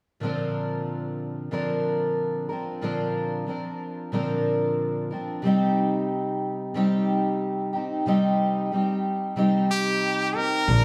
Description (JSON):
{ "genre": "acoustic pop", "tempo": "92 BPM", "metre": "4/4", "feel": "straight", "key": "Bb major", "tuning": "A4 = 438 Hz", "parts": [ { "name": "fingerpicked twelve-string acoustic guitar", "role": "accompaniment", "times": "0.2-10.8 s", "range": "Bb2 to Bb4", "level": "-26 LUFS", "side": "equal", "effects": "none" }, { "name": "brilliant trumpet", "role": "melody", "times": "9.7-10.8 s", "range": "G4 to Bb4", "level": "-25 LUFS", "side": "equal", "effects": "none" }, { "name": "upright bass", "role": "bass", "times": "10.7-10.8 s", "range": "Bb1", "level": "-20 LUFS", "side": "equal", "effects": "none" } ], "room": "wet stone room reverb, RT60 1.4 s", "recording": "band playing live in one room", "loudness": "-26 LUFS", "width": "mono", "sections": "0.2-10.7 A section", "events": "none", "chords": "0.2 Bbadd9; 5.4 Cm", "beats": "| 0.21 0.86 1.52 2.17 | 2.83 3.48 4.14 4.79 | 5.45 6.10 6.76 7.41 | 8.07 8.72 9.38 10.03 | 10.69" }